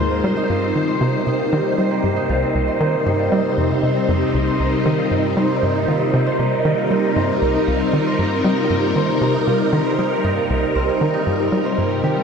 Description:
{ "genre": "ambient, sequencer-driven space music", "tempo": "117 BPM", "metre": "4/4", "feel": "straight", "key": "C minor", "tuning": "A4 = 440 Hz", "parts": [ { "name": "phased string machine", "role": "sustained chords", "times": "0.0-12.2 s", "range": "Ab2 to C5", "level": "-19 LUFS", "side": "equal", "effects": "ensemble chorus, phaser" }, { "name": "concert harp", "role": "arpeggios", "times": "0.0-12.2 s", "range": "C3 to C5", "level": "-22 LUFS", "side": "moving between left 3 dB and right 5 dB", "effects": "auto-pan, ping-pong delay" }, { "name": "tight sequencer bass", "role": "riff", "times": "0.0-12.2 s", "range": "C2 to G3", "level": "-22 LUFS", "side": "equal", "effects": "lush chorus, ping-pong delay" } ], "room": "wet huge ambient reverb, RT60 8.5 s", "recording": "none", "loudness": "-16 LUFS", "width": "side -6 dB against mid", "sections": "0.0-12.2 A section", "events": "none", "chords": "0.2 Cm" }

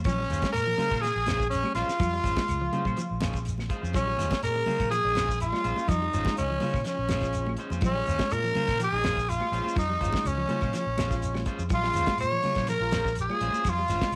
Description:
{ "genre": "afrobeat", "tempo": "124 BPM", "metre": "4/4", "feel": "straight", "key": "Bb dorian", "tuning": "A4 = 437 Hz", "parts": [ { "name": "growling tenor saxophone", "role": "melody", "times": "0.0-14.2 s", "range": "Db4 to Db5", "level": "-30 LUFS", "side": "equal", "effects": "slapback echo" }, { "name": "fingered electric bass", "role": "bass", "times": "0.0-14.2 s", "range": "Ab1 to Bb2", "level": "-34 LUFS", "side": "equal", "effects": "none" }, { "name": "damped 70s drum kit", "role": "drums", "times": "0.0-14.2 s", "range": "hi-hat, kick drum, snare drum", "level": "-34 LUFS", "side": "equal", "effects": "none" }, { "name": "brilliant trumpet", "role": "second line", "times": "0.1-14.2 s", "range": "Db4 to Db5", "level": "-40 LUFS", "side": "equal", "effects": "none" }, { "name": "electric guitar at the edge of break-up", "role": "arpeggios", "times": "0.1-14.2 s", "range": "Db3 to Ab3", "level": "-38 LUFS", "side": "equal", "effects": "phaser" }, { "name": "claves", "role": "percussion", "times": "0.1-13.8 s", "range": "none", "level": "-51 LUFS", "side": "equal", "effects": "none" }, { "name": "congas", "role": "percussion", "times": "0.1-14.1 s", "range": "none", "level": "-38 LUFS", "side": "equal", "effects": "none" }, { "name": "shekere", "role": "percussion", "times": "0.1-14.1 s", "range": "none", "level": "-40 LUFS", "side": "equal", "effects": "none" }, { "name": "electric guitar at the edge of break-up", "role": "stabs", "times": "0.3-14.0 s", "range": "Ab3 to C5", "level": "-42 LUFS", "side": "equal", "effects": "none" }, { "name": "barky tine electric piano", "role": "accompaniment", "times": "3.9-14.2 s", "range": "Ab3 to Ab4", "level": "-44 LUFS", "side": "equal", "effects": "overdrive, ensemble chorus" } ], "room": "light reverb, small room ambience", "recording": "none", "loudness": "-27 LUFS", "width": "mono", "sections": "0.0-14.2 A section", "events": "none", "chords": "0.0 Bbm9" }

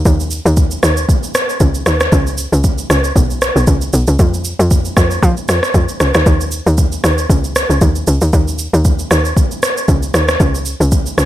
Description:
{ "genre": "amapiano", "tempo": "116 BPM", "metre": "4/4", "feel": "swing 55% on 16ths", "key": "unclear", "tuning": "A4 = 440 Hz", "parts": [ { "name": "tight log drum bass", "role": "bass", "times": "0.0-11.3 s", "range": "B1 to F3", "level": "-14 LUFS", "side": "equal", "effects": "none" }, { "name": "smooth R&B drum kit", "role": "drums", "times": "0.1-11.3 s", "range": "kick drum, rim click, shaker", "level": "-14 LUFS", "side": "equal", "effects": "none" } ], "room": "little or no reverb", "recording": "none", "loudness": "-11 LUFS", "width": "side -14 dB against mid", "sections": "0.0-11.3 A section", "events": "none", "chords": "none" }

